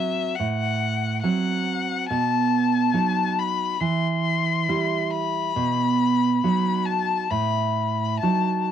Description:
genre	romantic duo for violin and classical guitar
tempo	69 BPM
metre	4/4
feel	rubato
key	unclear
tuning	A4 = 440 Hz
part	clear violin	melody	0.0-8.6 s	E5 to C6	-24 LUFS	left 9 dB	cassette tape
part	nylon-string guitar	accompaniment	0.0-8.7 s	A2 to E4	-23 LUFS	right 5 dB	cassette tape
room	moderate booth ambience, RT60 0.2 s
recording	home recording on cassette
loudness	-21 LUFS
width	side -9 dB against mid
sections	0.0-8.7 A section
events	none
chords	0.0 F#dim/A; 2.1 B; 3.8 Em; 5.6 B; 7.3 B7/A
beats	0.38 1.23 | 2.10 2.94 3.81 4.69 | 5.56 6.43 7.30 8.21

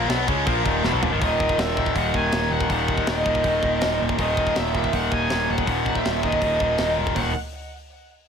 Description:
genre	heavy metal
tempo	161 BPM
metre	4/4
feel	straight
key	Eb phrygian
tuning	A4 = 440 Hz
part	tight distorted guitar	riff	0.0-7.3 s	Eb2 to Db4	-25 LUFS	left 14 dB	distortion
part	tight distorted guitar	riff	0.0-7.3 s	Eb2 to Db4	-26 LUFS	right 14 dB	distortion
part	picked electric bass	bass	0.0-7.3 s	Eb1 to Db2	-28 LUFS	equal	none
part	tight metal drum kit	drums	0.1-7.2 s	crash cymbal, hi-hat, kick drum, snare drum, toms	-28 LUFS	equal	none
part	high-gain lead guitar	melody	1.2-7.3 s	Eb5 to Ab5	-25 LUFS	right 1 dB	distortion, tape echo
room	light reverb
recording	none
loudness	-20 LUFS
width	side -7 dB against mid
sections	0.0-1.2 A section; 1.2-7.2 B section; 7.2-8.3 C section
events	drum fill 0.8-1.2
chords	0.0 Ebm; 1.2 Eb5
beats	0.09 0.46 0.83 | 1.21 1.58 1.95 2.32 | 2.69 3.06 3.44 3.81 | 4.18 4.55 4.92 5.30 | 5.67 6.04 6.42 6.79 | 7.16

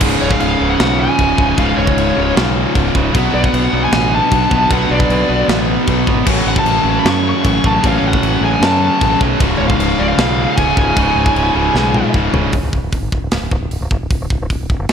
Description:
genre	heavy metal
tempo	153 BPM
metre	4/4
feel	straight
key	C# phrygian dominant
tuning	A4 = 442 Hz
part	distorted electric guitar	riff	0.0-12.5 s	C#2 to B3	-20 LUFS	left 10 dB	overdrive, slapback echo
part	fuzz guitar	riff	0.0-12.5 s	C#2 to B4	-21 LUFS	equal	distortion, slapback echo
part	tight distorted guitar	riff	0.0-12.5 s	C#2 to B3	-20 LUFS	right 10 dB	distortion, slapback echo
part	growling fingered electric bass	bass	0.0-14.9 s	C#1 to F#2	-19 LUFS	equal	overdrive
part	tight metal drum kit	drums	0.0-14.9 s	china cymbal, crash cymbal, hi-hat, kick drum, snare drum, toms	-18 LUFS	equal	none
part	smooth overdriven lead guitar	melody	0.2-12.1 s	C#5 to C#6	-18 LUFS	left 1 dB	tape echo
room	moderate lush hall reverb, RT60 1.9 s, small room ambience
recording	big arena sound, faint mains hum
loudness	-12 LUFS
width	side -7 dB against mid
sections	0.0-12.5 A section; 12.5-14.9 B section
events	drum fill 11.7-12.5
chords	0.0 C#; 3.1 Bm; 6.3 F#m/A; 9.4 C#; 12.5 C#5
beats	| 0.01 0.40 0.79 1.19 | 1.58 1.97 2.36 2.75 | 3.14 3.53 3.92 4.32 | 4.71 5.10 5.49 5.88 | 6.27 6.66 7.05 7.44 | 7.83 8.22 8.62 9.01 | 9.40 9.79 10.18 10.57 | 10.96 11.36 11.75 12.14 | 12.53 12.92 13.32 13.71 | 14.10 14.49 14.89

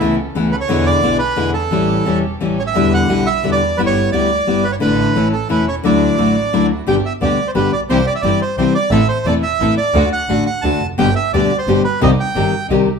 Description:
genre	tango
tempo	175 BPM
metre	3/4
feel	rubato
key	D major, G major from 6.9 s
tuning	A4 = 438 Hz
part	bandoneon	melody	0.0-12.7 s	E4 to A5	-19 LUFS	right 4 dB	none
part	nylon-string guitar	accompaniment	0.0-12.9 s	B2 to G4	-16 LUFS	left 4 dB	none
part	warm chamber string section	stabs	0.0-12.8 s	A3 to A4	-27 LUFS	right 2 dB	none
part	clear double bass	bass	0.0-13.0 s	E1 to E2	-21 LUFS	right 2 dB	none
room	moderate large studio reverb, RT60 1.0 s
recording	band playing live in one room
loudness	-13 LUFS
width	side -6 dB against mid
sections	0.0-6.9 A section; 6.9-13.0 B section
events	none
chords	0.0 Aadd9/C#; 0.7 E7; 1.7 A7; 2.8 Em7; 3.8 G6; 4.8 Asus4; 5.1 A; 5.8 Dadd9; 6.9 G; 7.9 C; 8.9 Am; 9.9 D; 11.0 G; 12.0 Cm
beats	0.01 0.35 | 0.69 1.03 1.37 | 1.71 2.06 2.40 | 2.75 3.10 3.44 | 3.78 4.12 4.46 | 4.80 5.14 5.48 | 5.83 6.17 6.52 | 6.86 7.21 7.56 | 7.90 8.24 8.59 | 8.93 9.26 9.60 | 9.95 10.29 10.63 | 10.98 11.33 11.67 | 12.02 12.36 12.70

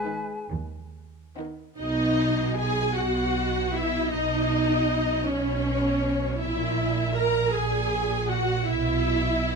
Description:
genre	classical, slow romantic movement for symphony orchestra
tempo	52 BPM (dotted quarters)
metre	6/8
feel	rubato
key	B major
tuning	A4 = 442 Hz
part	dark clarinet	second line	0.0-0.5 s	G#4	-39 LUFS	left 1 dB	none
part	hollow concert flute	second line	0.0-0.5 s	G#5	-33 LUFS	left 2 dB	none
part	warm oboe	second line	0.0-0.5 s	B4	-41 LUFS	right 1 dB	none
part	mellow French horn section	sustained chords	0.0-0.5 s	G#3	-38 LUFS	left 7 dB	none
part	dark symphonic double bass section	bass	0.0-9.6 s	G#1 to D#2	-30 LUFS	right 3 dB	none
part	rich symphonic cello section	bass	0.0-9.6 s	D#2 to B2	-32 LUFS	right 1 dB	none
part	warm chamber violin section	melody	0.1-9.6 s	D#4 to A#5	-34 LUFS	left 5 dB	none
part	warm symphonic violin section	second line	0.1-9.6 s	B3 to A#5	-33 LUFS	left 2 dB	none
part	warm symphonic viola section	accompaniment	0.1-9.6 s	D#3 to A#4	-26 LUFS	right 1 dB	none
room	moderate recital hall reverb, RT60 1.6 s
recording	close, detailed microphones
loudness	-23 LUFS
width	side -4 dB against mid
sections	0.0-1.8 A section; 1.8-9.6 B section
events	none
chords	0.0 G#m; 1.8 B; 6.4 F#9/A#; 8.7 N.C.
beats	0.51 | 1.80 2.96 | 4.13 5.28 | 6.42 7.54 | 8.68

